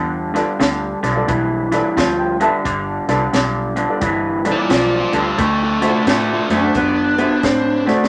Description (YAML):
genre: electric blues shuffle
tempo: 88 BPM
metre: 4/4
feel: swing 63% on 8ths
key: unclear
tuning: A4 = 438 Hz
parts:
  - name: electric guitar through a small old amp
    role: riff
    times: 0.0-8.1 s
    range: G2 to C4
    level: -20 LUFS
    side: equal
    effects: none
  - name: vintage muted fingered electric bass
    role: bass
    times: 0.0-8.0 s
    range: G1 to A2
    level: -29 LUFS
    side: equal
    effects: none
  - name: dark concert grand piano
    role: accompaniment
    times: 0.4-8.0 s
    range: F4 to A5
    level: -24 LUFS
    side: equal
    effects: none
  - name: compact cocktail drum kit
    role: drums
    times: 0.4-8.1 s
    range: hi-hat, kick drum, snare drum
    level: -23 LUFS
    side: equal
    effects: none
  - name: smooth overdriven lead guitar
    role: melody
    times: 4.5-7.9 s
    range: A3 to D5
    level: -22 LUFS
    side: equal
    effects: none
room: wet studio reverb, RT60 0.7 s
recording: none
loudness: -17 LUFS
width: mono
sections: 0.0-8.1 A section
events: lead electric guitar solo 0.0-8.1; grand piano fill 1.6-2.7; drum fill 7.8-8.1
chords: 0.0 G7; 5.4 D7